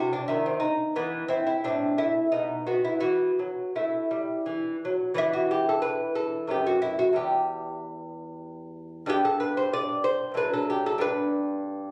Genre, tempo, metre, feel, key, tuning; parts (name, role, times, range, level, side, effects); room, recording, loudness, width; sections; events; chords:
classical, baroque-style dance for lute; 81-95 BPM; 3/4; rubato; E minor; A4 = 436 Hz
lute; solo; 0.0-11.9 s; E2 to D5; -27 LUFS; equal
moderate recital hall reverb, RT60 1.3 s; recorded on a phone in the room, club reverb, compression; -27 LUFS; mono
0.0-5.2 A section; 5.2-11.9 B section
0.3 B/D#; 1.0 N.C.; 1.6 Amadd11; 2.3 N.C.; 3.0 Em; 9.1 G; 10.4 D/A; 11.0 G